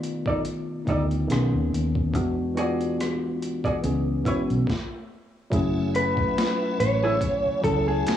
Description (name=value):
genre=R&B, neo-soul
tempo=71 BPM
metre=4/4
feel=swing 56% on 16ths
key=F# minor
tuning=A4 = 444 Hz
part: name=tine electric piano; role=accompaniment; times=0.0-8.2 s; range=D#3 to D5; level=-26 LUFS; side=left 1 dB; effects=overdrive, fast stereo tremolo, cassette tape
part: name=vintage muted fingered electric bass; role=bass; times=0.0-8.1 s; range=F#1 to E2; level=-27 LUFS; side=equal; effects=none
part: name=boom bap sampler-style drum kit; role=drums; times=0.0-8.2 s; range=finger snaps, hi-hat, kick drum, rim click, snare drum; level=-30 LUFS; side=equal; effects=overdrive, cassette tape
part: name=hollow-body jazz guitar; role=second line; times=0.3-7.2 s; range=A3 to D5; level=-29 LUFS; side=right 1 dB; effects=cassette tape
part: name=tonewheel organ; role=sustained chords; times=5.5-8.2 s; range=A3 to G#5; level=-35 LUFS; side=left 2 dB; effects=chorus vibrato, slow rotary speaker, cassette tape
part: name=electric guitar through a small old amp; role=melody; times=6.0-8.2 s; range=G#4 to C#5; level=-24 LUFS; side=right 1 dB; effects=analog delay
room=digital ambience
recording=home recording on cassette, small room ambience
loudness=-22 LUFS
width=side -10 dB against mid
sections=0.0-5.5 A section; 5.5-8.2 B section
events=stop 4.7-5.5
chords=0.0 B7alt; 1.3 B13; 2.1 E9; 3.8 C#m7; 5.5 F#m9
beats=0.44 1.29 | 2.13 2.98 3.82 4.67 | 5.51 6.36 7.20 8.05